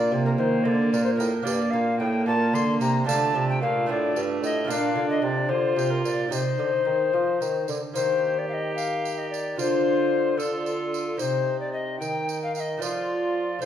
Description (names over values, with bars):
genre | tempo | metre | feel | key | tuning
classical, renaissance-style consort dance | 74 BPM (dotted quarters) | 6/8 | straight | C dorian | A4 = 440 Hz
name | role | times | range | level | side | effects
alto recorder | melody | 0.0-13.7 s | A4 to C6 | -26 LUFS | left 4 dB | none
lute | accompaniment | 0.0-13.7 s | G2 to C5 | -30 LUFS | right 4 dB | none
warm viola | accompaniment | 0.0-13.7 s | A3 to G4 | -29 LUFS | right 1 dB | none
mellow bassoon | bass | 0.0-13.7 s | G2 to F3 | -30 LUFS | right 1 dB | none
tambourine | percussion | 0.9-13.7 s | none | -39 LUFS | right 7 dB | none
room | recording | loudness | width
wet stone room reverb, RT60 1.2 s | heard from further back in the room | -22 LUFS | side -10 dB against mid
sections
0.0-8.0 A section; 8.0-13.7 B section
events
none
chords
0.0 F; 1.5 Gm; 3.1 Dm; 4.7 Bb; 6.3 Cm; 8.0 Eb; 9.6 Dm; 11.2 Cm; 12.8 F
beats
0.66 | 1.46 2.27 | 3.08 3.88 | 4.69 5.50 | 6.32 7.14 | 7.96 8.77 | 9.58 10.39 | 11.20 12.00 | 12.81 13.61